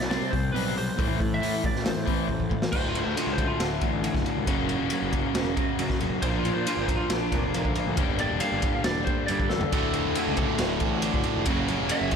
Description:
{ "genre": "quiet-loud alternative rock", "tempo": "137 BPM", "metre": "4/4", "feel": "straight", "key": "D major", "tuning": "A4 = 439 Hz", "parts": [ { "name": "lightly driven lead guitar", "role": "melody", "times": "0.0-12.2 s", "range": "D4 to F5", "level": "-32 LUFS", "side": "equal", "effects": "slapback echo" }, { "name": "semi-hollow electric guitar", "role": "arpeggios", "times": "0.0-12.2 s", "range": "D2 to Bb4", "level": "-32 LUFS", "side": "right 6 dB", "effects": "lush chorus" }, { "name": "distorted electric guitar", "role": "riff", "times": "0.0-12.2 s", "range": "D2 to Bb4", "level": "-30 LUFS", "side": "left 11 dB", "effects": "distortion, slapback echo" }, { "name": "fuzz picked electric bass", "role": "bass", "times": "0.0-12.2 s", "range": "D1 to C3", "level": "-32 LUFS", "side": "equal", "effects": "overdrive" }, { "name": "raw garage drum kit", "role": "drums", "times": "0.0-12.2 s", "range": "crash cymbal, hi-hat, kick drum, ride cymbal, snare drum, splash cymbal, toms", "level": "-28 LUFS", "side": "equal", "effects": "none" }, { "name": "tight distorted guitar", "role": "riff", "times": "9.7-12.2 s", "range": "D2 to F#3", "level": "-30 LUFS", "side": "right 11 dB", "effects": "distortion, slapback echo" } ], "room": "moderate scoring stage reverb, RT60 2.1 s", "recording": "big arena sound", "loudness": "-24 LUFS", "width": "side -6 dB against mid", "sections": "0.0-2.7 A section; 2.7-12.2 B section", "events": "drum fill 2.3-2.7, 9.5; lead electric guitar solo 2.7-12.2", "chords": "0.0 C5; 1.0 Am; 2.7 D; 4.5 F#; 6.2 Bb; 8.0 Gm; 9.7 D; 11.5 F#" }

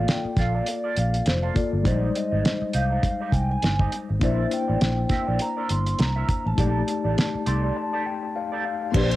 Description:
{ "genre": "lush 1970s-style soul", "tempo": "102 BPM", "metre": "4/4", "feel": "swing 58% on 16ths", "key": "unclear", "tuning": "A4 = 440 Hz", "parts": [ { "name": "vibraphone with soft mallets", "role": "melody", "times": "0.0-8.2 s", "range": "C5 to C6", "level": "-30 LUFS", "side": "right 1 dB", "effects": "cassette tape, plate reverb" }, { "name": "mellow tine electric piano", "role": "accompaniment", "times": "0.0-9.2 s", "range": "G3 to C6", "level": "-28 LUFS", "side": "left 6 dB", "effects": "medium stereo tremolo, cassette tape, plate reverb" }, { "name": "electric guitar through a small old amp", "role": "riff", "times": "0.0-9.2 s", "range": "Bb3 to F5", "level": "-33 LUFS", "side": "right 6 dB", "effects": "wah, spring reverb, cassette tape" }, { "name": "vintage muted fingered electric bass", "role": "bass", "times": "0.0-9.2 s", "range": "F1 to C2", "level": "-24 LUFS", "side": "equal", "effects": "none" }, { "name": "cloth-damped thuddy drum kit", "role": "drums", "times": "0.1-9.2 s", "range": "crash cymbal, hi-hat, kick drum, snare drum", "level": "-24 LUFS", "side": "equal", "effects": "cassette tape" }, { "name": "rich studio string section", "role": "second line", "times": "8.9-9.2 s", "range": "C5 to C6", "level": "-36 LUFS", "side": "equal", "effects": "cassette tape" }, { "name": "mellow French horn section", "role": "sustained chords", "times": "8.9-9.2 s", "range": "C3 to G4", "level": "-33 LUFS", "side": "right 3 dB", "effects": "stereo widening, cassette tape, plate reverb" }, { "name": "triangle", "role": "percussion", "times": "8.9-9.2 s", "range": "none", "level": "-38 LUFS", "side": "left 8 dB", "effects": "none" } ], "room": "light reverb", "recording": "home recording on cassette", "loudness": "-21 LUFS", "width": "side -16 dB against mid", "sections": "0.0-8.9 A section", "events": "tine electric piano fill 7.2-8.9; break 7.8-8.9", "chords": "0.0 Bbmaj7; 1.8 Abmaj7; 4.2 C9; 6.6 F13/A" }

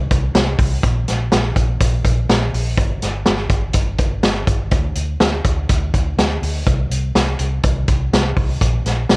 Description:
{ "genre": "jangly indie pop", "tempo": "124 BPM", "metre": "4/4", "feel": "straight", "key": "unclear", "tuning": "A4 = 441 Hz", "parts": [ { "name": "vintage muted fingered electric bass", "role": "bass", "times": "0.0-9.2 s", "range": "G1 to D2", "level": "-20 LUFS", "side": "equal", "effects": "none" }, { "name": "vintage drum kit", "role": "drums", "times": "0.1-9.2 s", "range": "hi-hat, kick drum, snare drum", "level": "-16 LUFS", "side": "equal", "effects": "none" } ], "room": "light reverb", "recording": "worn, warbling old tape, cassette tape, warbly pitch drift", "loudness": "-15 LUFS", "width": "side -28 dB against mid", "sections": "0.0-9.2 A section", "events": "none", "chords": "none" }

